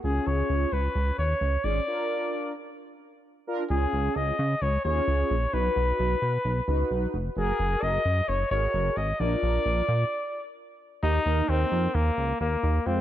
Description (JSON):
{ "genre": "synth-pop", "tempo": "131 BPM", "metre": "4/4", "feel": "straight", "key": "unclear", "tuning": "A4 = 441 Hz", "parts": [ { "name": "clear flugelhorn", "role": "melody", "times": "0.0-13.0 s", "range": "Bb3 to Eb5", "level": "-28 LUFS", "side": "left 2 dB", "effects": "slapback echo" }, { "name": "mellow synth brass", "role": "accompaniment", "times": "0.0-13.0 s", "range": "Ab3 to B4", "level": "-32 LUFS", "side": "right 2 dB", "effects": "chorus" }, { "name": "chorused synth bass", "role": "bass", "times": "0.0-13.0 s", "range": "F1 to Db3", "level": "-26 LUFS", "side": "equal", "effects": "none" } ], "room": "light reverb, small room ambience", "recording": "dark, warm production", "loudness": "-24 LUFS", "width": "side -12 dB against mid", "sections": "0.0-3.7 A section; 3.7-11.0 B section; 11.0-13.0 C section", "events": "break 1.9-3.7; stop 10.1-11.0", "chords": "0.0 Db; 1.9 Bb; 3.7 Db; 5.5 B; 7.4 Gbadd9; 9.2 Bb; 11.0 Eb" }